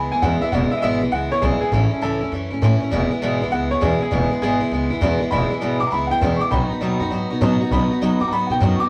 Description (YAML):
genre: rockabilly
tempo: 200 BPM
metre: 4/4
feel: swing 64% on 8ths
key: E major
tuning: A4 = 439 Hz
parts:
  - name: bright upright piano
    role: melody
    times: 0.0-8.9 s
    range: G#4 to D6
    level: -25 LUFS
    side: equal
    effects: none
  - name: picked steel-string acoustic guitar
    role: accompaniment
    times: 0.0-8.9 s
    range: E2 to F#4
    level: -23 LUFS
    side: equal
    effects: none
  - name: upright bass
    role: bass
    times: 0.0-8.8 s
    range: E1 to B2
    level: -25 LUFS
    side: equal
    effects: none
room: wet small room ambience, RT60 0.5 s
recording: rough rehearsal-room recording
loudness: -20 LUFS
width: mono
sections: 0.0-8.9 A section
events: none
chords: 0.0 E; 1.7 A; 2.9 E; 6.5 B